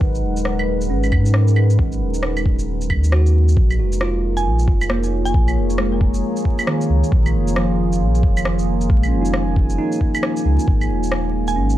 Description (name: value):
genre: future garage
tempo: 135 BPM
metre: 4/4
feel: swing 62% on 16ths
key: unclear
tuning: A4 = 440 Hz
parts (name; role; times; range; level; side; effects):
- bell-like tine electric piano; accompaniment; 0.0-11.8 s; D#3 to F#4; -25 LUFS; right 2 dB; sidechain pumping, analog delay
- deep dark ambient pad; sustained chords; 0.0-11.8 s; G#3 to A#5; -24 LUFS; equal; chorus, built-in reverb, sidechain pumping
- warm sub bass; bass; 0.0-11.8 s; D#1 to G#2; -18 LUFS; equal; sidechain pumping
- electronic kick drum; drums; 0.0-10.8 s; none; -18 LUFS; equal; studio reverb
- electronic shaker, rim click and claves; drums; 0.1-11.8 s; none; -26 LUFS; right 1 dB; studio reverb
- mallet-like synth pluck; melody; 4.4-5.6, 11.5-11.7 s; G#5; -27 LUFS; right 3 dB; chorus, cassette tape, analog delay
room: little or no reverb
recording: dry, gritty hardware recording, vinyl crackle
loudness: -16 LUFS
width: side -14 dB against mid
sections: 0.0-3.6 A section; 3.6-11.8 B section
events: none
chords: 0.0 G#m9; 3.6 A#m7; 10.7 G#7sus2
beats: | 0.01 0.46 0.90 1.34 | 1.79 2.23 2.68 3.12 | 3.57 4.01 4.46 4.90 | 5.34 5.79 6.23 6.68 | 7.12 7.57 8.01 8.46 | 8.90 9.34 9.79 10.23 | 10.68 11.12 11.57